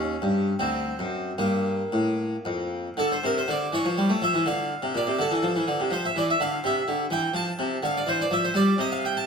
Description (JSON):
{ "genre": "classical, baroque-style suite movement for harpsichord", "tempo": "74-84 BPM (dotted quarters)", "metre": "6/8", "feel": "rubato", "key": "D minor", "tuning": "A4 = 441 Hz", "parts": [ { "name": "harpsichord", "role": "solo", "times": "0.0-9.3 s", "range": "D2 to A5", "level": "-23 LUFS", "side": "equal", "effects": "none" } ], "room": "wet stone room reverb, RT60 1.4 s", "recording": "none", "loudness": "-23 LUFS", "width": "side -6 dB against mid", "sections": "0.0-3.0 A section; 3.0-9.3 A section", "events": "none", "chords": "0.0 Eb7; 0.6 D7; 1.4 Gm; 3.0 Bbmaj9; 3.7 A7/E; 4.5 Dm; 5.9 Dm9; 6.6 C; 7.3 F", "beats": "0.59 | 1.38 2.18 | 2.97 3.72 | 4.45 5.18 | 5.90 6.62 | 7.33 8.06 | 8.78" }